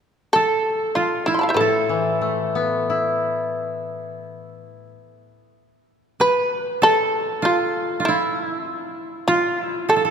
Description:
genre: japanese traditional, Japanese chamber music.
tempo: 43-50 BPM.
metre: 4/4.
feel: rubato.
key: unclear.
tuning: A4 = 440 Hz.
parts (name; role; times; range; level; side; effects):
shamisen; melody; 0.3-10.1 s; E4 to C6; -20 LUFS; equal; none.
koto; second line; 0.4-10.1 s; E4 to B4; -22 LUFS; right 3 dB; none.
koto; accompaniment; 1.6-5.6 s; A2 to E4; -23 LUFS; left 3 dB; none.
room: wet church reverb, RT60 3.7 s.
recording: minimal, uncompressed stereo recording.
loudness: -18 LUFS.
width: side -7 dB against mid.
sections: 0.0-4.3 A section; 4.3-10.1 B section.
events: none.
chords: none.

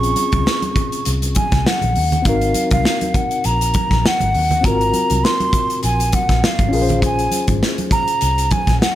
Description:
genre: lush 1970s-style soul.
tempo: 101 BPM.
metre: 4/4.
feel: swing 54% on 16ths.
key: unclear.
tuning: A4 = 440 Hz.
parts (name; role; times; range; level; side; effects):
breathy hollow jazz flute; melody; 0.0-9.0 s; F5 to Db6; -20 LUFS; right 1 dB; none.
reed electric piano; accompaniment; 0.0-9.0 s; C4 to C5; -23 LUFS; left 3 dB; fast tremolo.
vintage muted fingered electric bass; bass; 0.0-8.8 s; Ab1 to Eb2; -20 LUFS; equal; tube saturation.
modern studio drum kit; drums; 0.0-9.0 s; hi-hat, kick drum, snare drum; -19 LUFS; equal; none.
congas; percussion; 0.2-9.0 s; none; -27 LUFS; right 4 dB; none.
room: little or no reverb.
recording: none.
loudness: -14 LUFS.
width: side -13 dB against mid.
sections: 0.0-9.0 A section.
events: none.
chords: 0.0 Bbm9 (rootless); 2.3 Ab13; 6.7 Bbm9.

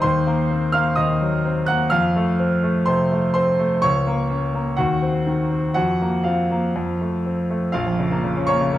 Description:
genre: classical, virtuoso piano study.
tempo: 125 BPM.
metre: 4/4.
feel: rubato.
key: Bb minor.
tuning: A4 = 440 Hz.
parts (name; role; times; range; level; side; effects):
bright grand piano; solo; 0.0-8.8 s; Bb1 to Gb6; -18 LUFS; equal; none.
room: wet recital hall reverb, RT60 1.6 s.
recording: dark, warm production.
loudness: -18 LUFS.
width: side -13 dB against mid.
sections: 0.0-7.7 A section; 7.7-8.8 B section.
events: none.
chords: 0.0 Cm7b5/Eb; 1.9 F; 3.8 Bbm/Db; 4.8 Cdim/Eb; 5.8 Fsus4; 6.8 F; 7.7 Bbm.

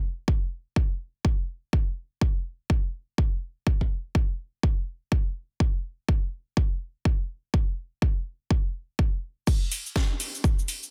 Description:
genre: house.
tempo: 124 BPM.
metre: 4/4.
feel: swing 60% on 16ths.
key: none.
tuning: none.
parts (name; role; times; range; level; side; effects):
electronic kick drum; drums; 0.3-10.6 s; none; -26 LUFS; equal; none.
house drum kit; drums; 9.5-10.9 s; cabasa, crash cymbal, hi-hat, snare drum; -34 LUFS; equal; none.
room: little or no reverb.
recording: dense, heavily limited modern master.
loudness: -28 LUFS.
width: mono.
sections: 0.0-9.5 A section; 9.5-10.9 B section.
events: drop 9.5-10.9.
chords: none.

